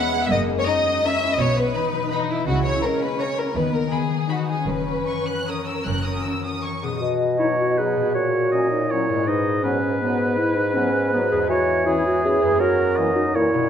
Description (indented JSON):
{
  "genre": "classical, orchestral ballroom waltz",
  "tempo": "146-179 BPM",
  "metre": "3/4",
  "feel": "rubato",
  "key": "B major",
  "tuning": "A4 = 437 Hz",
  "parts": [
    { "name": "rich studio violin section", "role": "melody", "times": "0.0-7.0 s", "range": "A#5 to F#6", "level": "-33 LUFS", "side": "left 2 dB", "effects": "none" },
    { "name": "rich studio violin section", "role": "second line", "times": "0.0-6.8 s", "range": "D#4 to F#5", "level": "-23 LUFS", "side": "left 2 dB", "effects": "none" },
    { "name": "warm studio viola section", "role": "accompaniment", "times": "0.0-6.8 s", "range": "A#3 to E4", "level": "-29 LUFS", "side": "right 2 dB", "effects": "none" },
    { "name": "concert harp", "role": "arpeggios", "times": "0.0-13.7 s", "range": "E2 to D#5", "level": "-28 LUFS", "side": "left 8 dB", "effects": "none" },
    { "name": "rich studio cello section", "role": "bass", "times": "0.3-6.2 s", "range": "F#2 to D#3", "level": "-30 LUFS", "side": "right 3 dB", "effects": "none" },
    { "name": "rich studio double bass section", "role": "bass", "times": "0.3-6.2 s", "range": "F#1 to D#2", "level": "-29 LUFS", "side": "right 4 dB", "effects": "none" },
    { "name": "dark clarinet", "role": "second line", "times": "6.8-13.7 s", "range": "B3 to G#4", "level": "-22 LUFS", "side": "right 1 dB", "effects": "none" },
    { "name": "mellow hollow concert flute", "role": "second line", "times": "7.0-13.7 s", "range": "A#4 to D#5", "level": "-26 LUFS", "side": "equal", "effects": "none" },
    { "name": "warm bassoon", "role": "accompaniment", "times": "7.0-13.7 s", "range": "G#2 to F#3", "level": "-25 LUFS", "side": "right 2 dB", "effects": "none" },
    { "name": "warm oboe", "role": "second line", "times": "7.4-13.7 s", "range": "G#4 to D#5", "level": "-25 LUFS", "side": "right 1 dB", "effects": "none" },
    { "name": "mellow French horn section", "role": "sustained chords", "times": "7.4-13.5 s", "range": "E3 to D#4", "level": "-30 LUFS", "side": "left 2 dB", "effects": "none" }
  ],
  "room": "wet concert hall reverb, RT60 1.9 s",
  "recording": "none",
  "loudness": "-19 LUFS",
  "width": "side -8 dB against mid",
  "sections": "0.0-7.0 A section; 7.0-13.7 B section",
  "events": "none",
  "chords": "0.3 F#13; 1.4 B; 2.5 A#dim/C#; 3.6 B/D#; 4.7 F#; 7.0 B; 8.1 F#/A#; 9.3 G#m7; 11.5 C#m/E; 12.6 F#7"
}